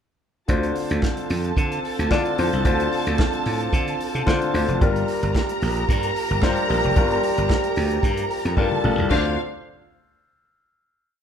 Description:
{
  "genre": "disco",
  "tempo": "112 BPM",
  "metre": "4/4",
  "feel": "straight",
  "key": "D minor",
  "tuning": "A4 = 440 Hz",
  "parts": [
    { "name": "warm studio string section", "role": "second line", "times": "0.5-9.4 s", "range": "D4 to Bb5", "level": "-27 LUFS", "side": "right 2 dB", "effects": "none" },
    { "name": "clear grand piano", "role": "accompaniment", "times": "0.5-9.4 s", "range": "D3 to D5", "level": "-25 LUFS", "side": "left 5 dB", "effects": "none" },
    { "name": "clear French horn section", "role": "sustained chords", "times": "0.5-9.4 s", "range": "D3 to G4", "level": "-29 LUFS", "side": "right 3 dB", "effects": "none" },
    { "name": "slap bass", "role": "bass", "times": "0.5-9.4 s", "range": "F1 to D3", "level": "-25 LUFS", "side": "right 1 dB", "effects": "none" },
    { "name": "warm soul drum kit", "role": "drums", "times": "0.5-9.2 s", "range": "crash cymbal, handclaps, hi-hat, kick drum, snare drum, toms", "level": "-24 LUFS", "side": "right 1 dB", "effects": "none" }
  ],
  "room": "moderate large studio reverb, RT60 1.1 s",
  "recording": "band playing live in one room",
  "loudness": "-19 LUFS",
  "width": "side -8 dB against mid",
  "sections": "0.5-9.1 groove; 9.1-11.2 final chord",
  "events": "drum fill 8.6-9.1",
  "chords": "0.5 Dm7; 4.8 Gm7; 9.1 Dm7"
}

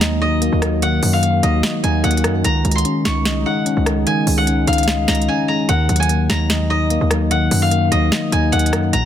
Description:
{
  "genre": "hip hop, trap",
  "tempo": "148 BPM",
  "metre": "4/4",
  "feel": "half-time",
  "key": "Eb minor",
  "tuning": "A4 = 441 Hz",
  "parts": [
    { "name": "steel-string zither", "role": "melody", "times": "0.0-9.1 s", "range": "Eb5 to Db6", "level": "-21 LUFS", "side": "left 1 dB", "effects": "low-pass filter" },
    { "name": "mellow tine electric piano", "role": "accompaniment", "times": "0.0-9.1 s", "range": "Bb2 to Eb5", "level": "-20 LUFS", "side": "left 3 dB", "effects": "low-pass filter" },
    { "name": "deep dark ambient pad", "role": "sustained chords", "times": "0.0-5.7 s", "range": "Db3 to Gb4", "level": "-26 LUFS", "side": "right 2 dB", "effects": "chorus, built-in reverb" },
    { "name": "hard-hitting 808-style bass", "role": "bass", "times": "0.0-9.1 s", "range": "Bb1 to Gb2", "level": "-19 LUFS", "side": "right 1 dB", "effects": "none" },
    { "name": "trap drum kit", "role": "drums", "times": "0.0-9.0 s", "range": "hi-hat, rim click, snare drum", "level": "-22 LUFS", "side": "right 1 dB", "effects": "overdrive" }
  ],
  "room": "digital ambience",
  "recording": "dense, heavily limited modern master",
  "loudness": "-14 LUFS",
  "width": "side -10 dB against mid",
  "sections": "0.0-5.7 A section; 5.7-9.1 A section",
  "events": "silent gap 5.3-5.7",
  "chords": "0.0 Ebm; 2.4 Dbsus2; 5.7 Ebm"
}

